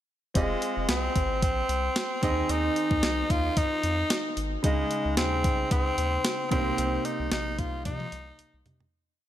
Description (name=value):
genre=1980s-style pop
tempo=112 BPM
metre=4/4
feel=swing 55% on 16ths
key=F minor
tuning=A4 = 437 Hz
part: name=clear grand piano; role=accompaniment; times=0.3-8.9 s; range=C3 to Eb5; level=-31 LUFS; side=right 1 dB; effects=none
part: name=raspy tenor saxophone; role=melody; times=0.4-8.6 s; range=Ab3 to F4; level=-29 LUFS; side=equal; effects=ping-pong delay
part: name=round analog bass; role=bass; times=0.4-8.9 s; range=F1 to C3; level=-32 LUFS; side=equal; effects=none
part: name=clean 12-bit digital drum machine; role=drums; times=0.4-8.9 s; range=hi-hat, kick drum, snare drum, toms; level=-29 LUFS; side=equal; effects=none
room=moderate plate reverb, RT60 2.5 s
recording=bright 1980s-style digital production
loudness=-24 LUFS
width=side -12 dB against mid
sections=0.4-8.9 verse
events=fade-out 6.8-8.9; drum fill 7.9-8.9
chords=0.4 Fm7; 2.2 Ab; 4.6 Dbsus2; 6.5 Cm7